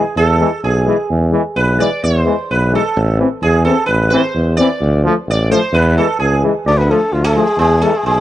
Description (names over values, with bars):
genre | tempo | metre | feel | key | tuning
balkan folk | 130 BPM | 2/4 | straight | E phrygian dominant | A4 = 440 Hz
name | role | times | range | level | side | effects
sitar | second line | 0.0-8.2 s | F3 to D5 | -17 LUFS | right 3 dB | none
brilliant trombone | accompaniment | 0.0-7.9 s | E3 to F3 | -20 LUFS | right 3 dB | none
warm euphonium | accompaniment | 0.0-7.9 s | G#3 to C4 | -17 LUFS | left 6 dB | none
clear tuba | bass | 0.2-8.2 s | A1 to E2 | -15 LUFS | equal | none
warm flugelhorn | melody | 6.7-8.2 s | F4 to D5 | -15 LUFS | left 2 dB | none
room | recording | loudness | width
small room ambience | dry, close 1970s-style studio recording | -12 LUFS | side -13 dB against mid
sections
0.0-6.7 A section; 6.7-8.2 B section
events
sitar solo 0.0-6.7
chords
0.0 E; 3.0 Am; 4.8 Dm; 5.7 E; 6.7 Dm; 7.6 E